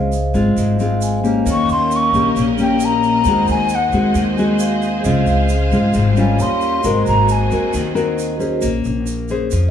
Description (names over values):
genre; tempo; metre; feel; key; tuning
bossa nova; 134 BPM; 4/4; straight; unclear; A4 = 440 Hz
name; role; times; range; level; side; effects
nylon-string guitar; accompaniment; 0.0-9.7 s; Ab2 to C5; -18 LUFS; left 4 dB; none
vibraphone with medium mallets; accompaniment; 0.0-9.7 s; Gb4 to Bb5; -24 LUFS; right 5 dB; none
upright bass; bass; 0.0-9.7 s; Ab1 to F2; -20 LUFS; equal; none
egg shaker; percussion; 0.1-9.7 s; none; -34 LUFS; right 8 dB; none
breathy hollow jazz flute; melody; 1.5-7.8 s; Gb5 to Db6; -18 LUFS; left 1 dB; plate reverb
clear studio string section; sustained chords; 1.5-8.6 s; Bb3 to F5; -26 LUFS; right 3 dB; none
room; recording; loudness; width
light reverb; studio ambience; -14 LUFS; side -9 dB against mid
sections
0.0-8.6 A section; 8.6-9.7 A section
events
flute solo 0.0-8.6; vibraphone fill 0.6-1.5, 4.2-5.0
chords
0.0 Dbmaj7; 1.5 Eb7; 3.3 Ab7/Eb; 5.0 Dbmaj7; 6.4 Eb9; 6.8 Ab9; 8.6 Bbm9